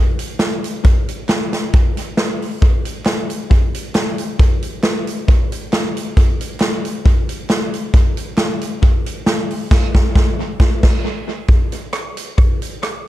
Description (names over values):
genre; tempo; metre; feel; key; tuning
ska; 135 BPM; 4/4; straight; none; none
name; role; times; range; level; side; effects
swinging big-band drum kit; drums; 0.2-12.9 s; crash cymbal, hi-hat, kick drum, rim click, snare drum; -14 LUFS; equal; tape echo
group handclap; percussion; 0.4-12.9 s; none; -30 LUFS; right 2 dB; none
room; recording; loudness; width
little or no reverb; dark, warm production; -15 LUFS; side -14 dB against mid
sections
0.0-11.5 A section; 11.5-13.1 B section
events
band accent 9.7-11.5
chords
none